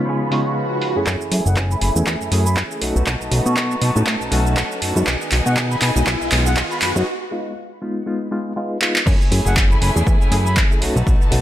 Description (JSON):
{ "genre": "filtered disco house", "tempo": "120 BPM", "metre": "4/4", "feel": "swing 57% on 16ths", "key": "F# dorian", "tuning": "A4 = 440 Hz", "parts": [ { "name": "reed electric piano", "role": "accompaniment", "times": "0.0-11.4 s", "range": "F#2 to G#4", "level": "-24 LUFS", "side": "equal", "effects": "fast tremolo, phaser, sidechain pumping, low-pass filter" }, { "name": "warm symphonic violin section", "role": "sustained chords", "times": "0.0-11.4 s", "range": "A3 to B5", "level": "-28 LUFS", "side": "left 1 dB", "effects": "sidechain pumping, low-pass filter" }, { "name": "direct-recorded clean electric guitar", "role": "riff", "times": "0.0-11.4 s", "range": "D#3 to G#4", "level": "-29 LUFS", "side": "right 1 dB", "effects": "sidechain pumping, low-pass filter" }, { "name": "swell and riser", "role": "sound effects", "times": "0.2-7.1 s", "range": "none", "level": "-28 LUFS", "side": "equal", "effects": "none" }, { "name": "bright reedy silver concert flute", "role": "melody", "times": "0.3-10.6 s", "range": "F#5 to C#6", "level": "-29 LUFS", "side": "right 1 dB", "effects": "sidechain pumping, low-pass filter, dub echo" }, { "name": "punchy analog drum machine", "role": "drums", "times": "0.3-11.4 s", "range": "crash cymbal, handclaps, hi-hat, shaker", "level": "-22 LUFS", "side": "right 1 dB", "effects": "overdrive, low-pass filter on hats, low-pass filter on snare, low-pass filter on perc, low-pass filter on cymbals" }, { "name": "fat analog bass", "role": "bass", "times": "1.1-11.4 s", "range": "F#1 to B2", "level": "-19 LUFS", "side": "equal", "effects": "sidechain pumping, low-pass filter" }, { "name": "electronic kick drum", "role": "drums", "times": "1.1-11.2 s", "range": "none", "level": "-18 LUFS", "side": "equal", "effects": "overdrive, high-pass filter on kick" } ], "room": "light reverb", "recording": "none", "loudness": "-16 LUFS", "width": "side -12 dB against mid", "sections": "0.0-1.1 A section; 1.1-9.1 B section; 9.1-11.4 C section", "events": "swell 0.2-1.1; build-up 1.1-9.1; drum fill 1.1-7.1, 8.8; riser 1.1-7.1; filter sweep on flute 1.1-9.1; break 7.1-9.1; drop 9.1-11.4", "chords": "0.0 C#7; 1.1 F#m9; 2.8 B7; 5.1 B6; 7.1 G#m6; 9.1 F#m9; 10.8 B7" }